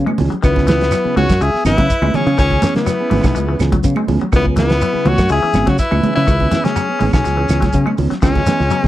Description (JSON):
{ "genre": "afrobeat", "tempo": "123 BPM", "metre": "4/4", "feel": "straight", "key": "C# minor", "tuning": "A4 = 442 Hz", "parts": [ { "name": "reed electric piano", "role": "accompaniment", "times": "0.0-8.9 s", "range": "C#3 to B3", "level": "-25 LUFS", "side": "left 11 dB", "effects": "none" }, { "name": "fingered electric bass", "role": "bass", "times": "0.0-8.9 s", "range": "G#1 to C#3", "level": "-17 LUFS", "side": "equal", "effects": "none" }, { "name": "semi-hollow electric guitar", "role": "arpeggios", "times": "0.1-8.8 s", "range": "D#3 to G#3", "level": "-25 LUFS", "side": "left 6 dB", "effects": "analog chorus" }, { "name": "mellow electric guitar", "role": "stabs", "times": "0.1-8.9 s", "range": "E3 to G#4", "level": "-23 LUFS", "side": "right 7 dB", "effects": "none" }, { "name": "claves", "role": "percussion", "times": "0.1-8.8 s", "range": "none", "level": "-32 LUFS", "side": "right 16 dB", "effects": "none" }, { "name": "congas", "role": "percussion", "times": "0.1-8.6 s", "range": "none", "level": "-22 LUFS", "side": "right 3 dB", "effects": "none" }, { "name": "cloth-damped thuddy drum kit", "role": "drums", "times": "0.2-8.9 s", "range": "crash cymbal, hi-hat, kick drum, snare drum", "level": "-18 LUFS", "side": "equal", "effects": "none" }, { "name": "shekere", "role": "percussion", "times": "0.2-8.8 s", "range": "none", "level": "-24 LUFS", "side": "right 2 dB", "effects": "none" }, { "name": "edgy tenor saxophone", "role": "melody", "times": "0.4-8.9 s", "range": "B3 to G#4", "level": "-18 LUFS", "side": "left 2 dB", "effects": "slapback echo" }, { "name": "warm trumpet", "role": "second line", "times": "0.4-8.9 s", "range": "G#3 to E5", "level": "-26 LUFS", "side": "right 4 dB", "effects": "none" } ], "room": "little or no reverb", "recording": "dry, close 1970s-style studio recording", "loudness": "-13 LUFS", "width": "side -14 dB against mid", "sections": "0.0-8.2 A section", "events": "none", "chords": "0.0 C#m7" }